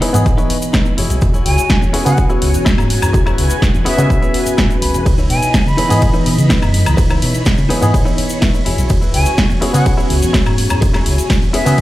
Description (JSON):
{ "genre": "filtered disco house", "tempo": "125 BPM", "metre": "4/4", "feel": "straight", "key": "E major", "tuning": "A4 = 440 Hz", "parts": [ { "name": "bright reed electric piano", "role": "accompaniment", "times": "0.0-11.8 s", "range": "E3 to D#5", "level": "-20 LUFS", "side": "equal", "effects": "overdrive, phaser, sidechain pumping" }, { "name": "string machine, full ensemble", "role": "sustained chords", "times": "0.0-11.8 s", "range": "E3 to B5", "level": "-23 LUFS", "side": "left 1 dB", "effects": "ensemble chorus, sidechain pumping" }, { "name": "direct-recorded clean electric guitar", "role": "riff", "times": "0.0-11.8 s", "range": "D#4 to B5", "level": "-24 LUFS", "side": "left 3 dB", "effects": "sidechain pumping" }, { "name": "fingered electric bass", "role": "bass", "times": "0.0-11.8 s", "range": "E1 to C#3", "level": "-16 LUFS", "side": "equal", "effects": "sidechain pumping" }, { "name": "house drum kit", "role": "drums", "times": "0.0-11.8 s", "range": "hi-hat, ride cymbal, snare drum, woodblock", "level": "-20 LUFS", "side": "equal", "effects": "sidechain pumping on hats, studio reverb, sidechain pumping on perc, sidechain pumping on cymbals" }, { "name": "egg shaker", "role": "percussion", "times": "0.1-11.8 s", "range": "none", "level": "-30 LUFS", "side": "left 2 dB", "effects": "sidechain pumping on perc" }, { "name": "electronic kick drum", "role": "drums", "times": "0.3-11.8 s", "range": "none", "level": "-16 LUFS", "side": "equal", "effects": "studio reverb" }, { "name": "jazz flute", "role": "melody", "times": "1.5-11.8 s", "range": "E5 to B5", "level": "-21 LUFS", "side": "equal", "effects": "sidechain pumping" } ], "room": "light reverb", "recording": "played on a big sound system in a bare room, large studio reverb", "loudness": "-11 LUFS", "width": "side -16 dB against mid", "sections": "0.0-11.8 A section", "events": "clean electric guitar fill 3.6-5.1, 7.9-8.9", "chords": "0.0 C#m9; 1.0 E69; 5.1 C#m9; 8.7 E69" }